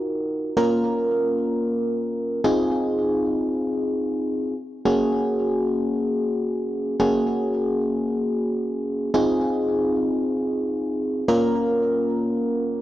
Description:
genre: pop.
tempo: free time.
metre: none.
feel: none.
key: unclear.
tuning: A4 = 440 Hz.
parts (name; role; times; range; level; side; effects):
FM electric piano; solo; 0.0-12.8 s; Bb3 to Bb4; -21 LUFS; equal; chorus, tape echo.
room: light reverb.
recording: dry, gritty hardware recording.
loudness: -21 LUFS.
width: side -14 dB against mid.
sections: 0.0-7.0 A section; 7.0-12.8 B section.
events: none.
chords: 0.0 Ebmadd9; 0.6 Bbm; 2.4 Fm7; 4.9 Gbadd9; 9.1 Fm7; 11.3 Bbm.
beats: free time.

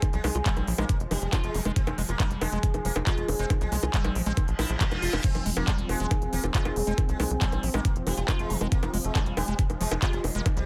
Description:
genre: psychedelic trance.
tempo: 138 BPM.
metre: 4/4.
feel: straight.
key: F minor.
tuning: A4 = 440 Hz.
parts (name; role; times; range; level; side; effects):
sitar; melody; 0.0-10.7 s; G3 to F4; -37 LUFS; equal; phaser, sidechain pumping, delay.
bubbling stepped-filter texture; sustained chords; 0.0-10.7 s; F3 to C4; -40 LUFS; equal; chorus, built-in reverb, sidechain pumping.
electronic kick drum; drums; 0.0-10.5 s; none; -28 LUFS; equal; overdrive.
techno drum kit; drums; 0.0-10.7 s; bongos, crash cymbal, handclaps, hi-hat; -34 LUFS; equal; overdrive.
liquid acid bass; riff; 0.1-10.6 s; E3 to F4; -37 LUFS; equal; phaser, sidechain pumping, delay.
tight sequencer bass; bass; 0.1-10.6 s; F1 to C2; -32 LUFS; equal; none.
reverse cymbal; sound effects; 4.5-5.2 s; none; -38 LUFS; equal; none.
room: digital ambience.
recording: none.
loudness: -27 LUFS.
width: mono.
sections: 0.0-10.7 A section.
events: reverse cymbal 4.5-5.2.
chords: 0.0 F5.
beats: | 0.02 0.46 0.89 1.33 | 1.76 2.20 2.63 3.07 | 3.50 3.94 4.37 4.81 | 5.24 5.68 6.11 6.54 | 6.98 7.42 7.85 8.28 | 8.72 9.15 9.59 10.02 | 10.46.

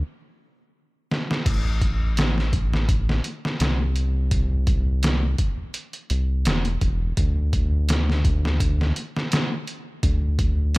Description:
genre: trip hop.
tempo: 84 BPM.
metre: 4/4.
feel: swing 53% on 16ths.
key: A minor.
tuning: A4 = 440 Hz.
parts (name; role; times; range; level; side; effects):
round analog bass; bass; 0.0-10.8 s; E1 to D2; -22 LUFS; equal; none.
trip hop sampler-style drum kit; drums; 1.1-10.8 s; crash cymbal, hi-hat, kick drum, snare drum; -23 LUFS; equal; overdrive, studio reverb.
room: digital ambience.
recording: none.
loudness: -20 LUFS.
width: side -23 dB against mid.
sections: 0.0-1.5 A section; 1.5-10.8 B section.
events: stop 0.0-1.5; drum fill 1.1-1.5.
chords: none.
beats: 0.03 0.75 | 1.46 2.17 2.89 3.60 | 4.32 5.03 5.75 6.46 | 7.17 7.89 8.60 9.32 | 10.03 10.75.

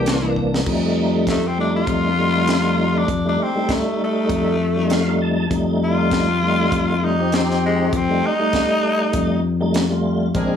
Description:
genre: straight-eighth soul blues.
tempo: 99 BPM.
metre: 4/4.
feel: swing 55% on 16ths.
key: F mixolydian.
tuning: A4 = 440 Hz.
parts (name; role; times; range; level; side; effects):
raspy tenor saxophone; melody; 0.0-9.4 s; Ab3 to G4; -22 LUFS; left 2 dB; none.
tonewheel organ; accompaniment; 0.0-10.6 s; E3 to A5; -21 LUFS; right 2 dB; slow rotary speaker, overdrive, chorus vibrato.
fingered electric bass; bass; 0.0-10.6 s; Bb1 to F2; -21 LUFS; left 4 dB; none.
tight funk drum kit; drums; 0.1-10.5 s; crash cymbal, hi-hat, kick drum, snare drum; -25 LUFS; equal; none.
bright horn section; sustained chords; 10.3-10.6 s; D4 to Bb4; -28 LUFS; left 2 dB; none.
room: light reverb, small room ambience.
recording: studio reverb.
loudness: -16 LUFS.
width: side -8 dB against mid.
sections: 0.7-10.6 A section.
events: drum fill 0.4-0.7; tenor saxophone solo 0.7-10.6; tonewheel organ fill 4.6-5.5.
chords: 0.0 C7; 0.7 F7.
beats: 0.07 | 0.67 1.28 1.88 2.49 | 3.09 3.70 4.30 4.91 | 5.51 6.12 6.72 7.33 | 7.93 8.53 9.14 9.74 | 10.35.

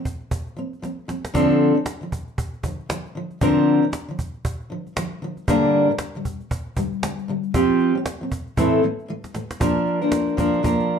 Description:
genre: acoustic pop.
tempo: 116 BPM.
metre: 4/4.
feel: swing 60% on 16ths.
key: unclear.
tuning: A4 = 439 Hz.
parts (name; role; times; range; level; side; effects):
fingerpicked steel-string acoustic guitar; accompaniment; 0.0-11.0 s; G2 to Bb4; -20 LUFS; equal; none.
cajon; drums; 0.1-10.9 s; none; -27 LUFS; right 1 dB; none.
room: wet studio reverb, RT60 0.8 s.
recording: dark, warm production.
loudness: -20 LUFS.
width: side -7 dB against mid.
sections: 0.0-9.6 A section; 9.6-11.0 B section.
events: drum fill 0.8-1.3, 9.1-9.6.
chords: 0.0 F5; 1.3 Dm7; 3.4 Bbadd9/D; 5.5 Gm; 7.5 Fsus2; 8.6 Am; 9.6 Gm7 (rootless).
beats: 0.32 0.83 | 1.35 1.86 2.38 2.90 | 3.41 3.93 4.45 4.96 | 5.48 6.00 6.51 7.03 | 7.54 8.06 8.58 9.09 | 9.61 10.13 10.64.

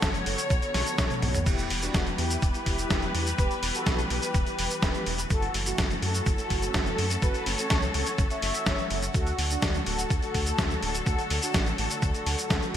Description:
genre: italo disco.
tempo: 125 BPM.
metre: 4/4.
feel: straight.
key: E dorian.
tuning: A4 = 440 Hz.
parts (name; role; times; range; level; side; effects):
mellow synth brass; melody; 0.0-12.8 s; A3 to E5; -33 LUFS; equal; chorus, digital delay.
muted studio string section; sustained chords; 0.0-12.8 s; D3 to C#5; -33 LUFS; left 1 dB; none.
round analog bass; bass; 0.0-12.8 s; D1 to F#2; -31 LUFS; equal; none.
dusty soul sampler-style drum kit; drums; 0.0-12.8 s; cabasa, crash cymbal, hi-hat, snare drum, toms; -29 LUFS; equal; overdrive, gated reverb.
electronic kick drum; drums; 0.0-12.6 s; none; -28 LUFS; equal; overdrive.
room: moderate lush hall reverb, RT60 1.9 s, digital ambience.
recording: bright 1980s-style digital production.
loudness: -24 LUFS.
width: side -10 dB against mid.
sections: 0.0-12.8 A section.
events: drum fill 1.1-1.5.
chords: 0.0 Bm; 1.5 Em; 5.3 F#m7; 9.1 D.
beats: 0.03 0.51 0.98 | 1.47 1.95 2.42 2.90 | 3.38 3.87 4.34 4.83 | 5.30 5.79 6.26 6.75 | 7.22 7.71 8.19 8.66 | 9.14 9.62 10.11 10.59 | 11.06 11.54 12.03 12.51.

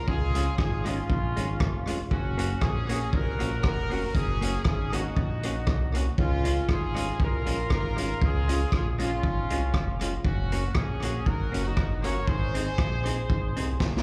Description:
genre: ska.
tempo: 118 BPM.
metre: 4/4.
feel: swing 54% on 8ths.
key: Db major.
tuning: A4 = 440 Hz.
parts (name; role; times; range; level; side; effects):
clear horn section; melody; 0.0-13.8 s; Db4 to Db5; -34 LUFS; equal; tape echo, slapback echo.
smooth synth bass; bass; 0.1-14.0 s; F1 to Db2; -32 LUFS; equal; none.
raw garage drum kit; drums; 0.1-14.0 s; hi-hat, kick drum, rim click, snare drum; -31 LUFS; equal; none.
vintage hollow-body jazz guitar; accompaniment; 0.3-13.7 s; Ab3 to Ab4; -37 LUFS; equal; slapback echo.
room: light reverb.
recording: live gig heard through the venue's PA, club reverb.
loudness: -27 LUFS.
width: mono.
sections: 0.0-14.0 A section.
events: drum fill 13.8.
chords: 0.0 Db; 2.1 Gb; 6.2 Db; 10.2 Gb; 12.3 Ab.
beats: | 0.07 0.58 1.09 1.60 | 2.11 2.62 3.12 3.63 | 4.14 4.65 5.16 5.67 | 6.18 6.68 7.19 7.70 | 8.21 8.72 9.23 9.73 | 10.24 10.75 11.26 11.77 | 12.28 12.79 13.30 13.81.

